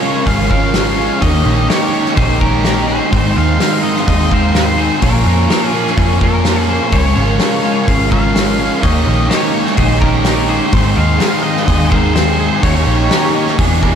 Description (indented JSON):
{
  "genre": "rock, shoegaze and dream pop",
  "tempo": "126 BPM",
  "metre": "4/4",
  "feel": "straight",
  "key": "unclear",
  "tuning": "A4 = 440 Hz",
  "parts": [
    { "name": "octave-fuzz lead guitar", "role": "melody", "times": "0.0-13.5 s", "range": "Bb4 to F5", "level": "-21 LUFS", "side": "left 1 dB", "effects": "distortion, tape echo" },
    { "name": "airy breathy pad", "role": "sustained chords", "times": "0.0-14.0 s", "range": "Ab3 to D6", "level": "-22 LUFS", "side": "right 1 dB", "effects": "chorus" },
    { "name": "twelve-string electric guitar", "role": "arpeggios", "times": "0.0-14.0 s", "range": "Ab4 to Db5", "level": "-26 LUFS", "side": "left 7 dB", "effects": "lush chorus, tape echo" },
    { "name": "crunchy overdriven guitar", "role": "riff", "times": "0.0-14.0 s", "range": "Ab2 to Ab4", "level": "-18 LUFS", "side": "right 8 dB", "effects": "reverse reverb" },
    { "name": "thick fuzz guitar", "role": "riff", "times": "0.0-14.0 s", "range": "E2 to Eb4", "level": "-18 LUFS", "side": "left 7 dB", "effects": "distortion, lush chorus" },
    { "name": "vintage muted picked electric bass", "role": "bass", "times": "0.3-14.0 s", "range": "Ab1 to F2", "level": "-16 LUFS", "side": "equal", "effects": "none" },
    { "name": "loose indie drum kit", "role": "drums", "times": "0.3-13.9 s", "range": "hi-hat, kick drum, snare drum", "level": "-18 LUFS", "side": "equal", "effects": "none" }
  ],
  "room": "moderate lush hall reverb, RT60 2.2 s",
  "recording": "dreamy mix soaked in reverb",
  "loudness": "-11 LUFS",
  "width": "side -8 dB against mid",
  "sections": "0.0-14.0 A section",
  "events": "none",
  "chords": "0.0 Db6; 1.2 Eb7sus4; 3.1 Ab6; 5.0 Bbm7; 6.9 Db6; 8.8 Eb7sus4; 10.7 Ab6; 12.6 Eb7"
}